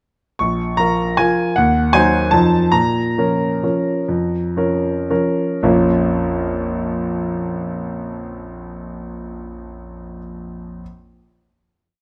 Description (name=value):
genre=classical, piano waltz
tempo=108-168 BPM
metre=3/4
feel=rubato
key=Bb minor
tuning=A4 = 440 Hz
part: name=clear concert grand piano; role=solo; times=0.4-10.8 s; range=Bb1 to Db6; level=-19 LUFS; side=equal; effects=none
room=moderate recital hall reverb, RT60 1.5 s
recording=close, detailed microphones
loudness=-18 LUFS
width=mono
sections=0.4-5.6 A section; 5.6-8.7 final chord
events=slowing down 2.1-5.6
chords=0.4 Bbm; 1.6 Cdim/Eb; 2.3 F7; 2.7 Bbm